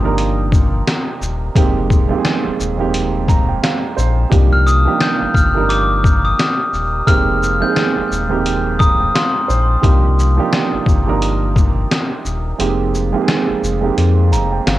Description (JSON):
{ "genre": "hip hop, boom-bap hip-hop", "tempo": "87 BPM", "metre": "4/4", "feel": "swing 59% on 16ths", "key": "C minor", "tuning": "A4 = 440 Hz", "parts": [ { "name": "dark grand piano", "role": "accompaniment", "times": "0.0-14.8 s", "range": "F2 to Bb5", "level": "-19 LUFS", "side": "right 6 dB", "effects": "cassette tape, high-pass filter, low-pass filter" }, { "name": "sub bass with octave", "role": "bass", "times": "0.0-14.8 s", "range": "Eb1 to F2", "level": "-17 LUFS", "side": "left 1 dB", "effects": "none" }, { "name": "trip hop sampler-style drum kit", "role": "drums", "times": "0.2-14.8 s", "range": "hi-hat, kick drum, shaker, snare drum", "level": "-16 LUFS", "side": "left 1 dB", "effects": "cassette tape" }, { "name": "glockenspiel with hard plastic mallets", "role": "melody", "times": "4.5-9.5 s", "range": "C6 to G6", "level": "-19 LUFS", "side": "left 1 dB", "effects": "high-pass filter, low-pass filter, cassette tape, tape echo" } ], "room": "light reverb", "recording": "home recording on cassette", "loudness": "-13 LUFS", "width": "side -15 dB against mid", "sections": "0.0-14.8 A section", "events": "kick muted 12.6-14.8", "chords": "0.0 Cm11; 1.6 Fm11; 4.3 Cm11; 7.1 Fm11; 9.8 Cm11; 12.6 Fm11" }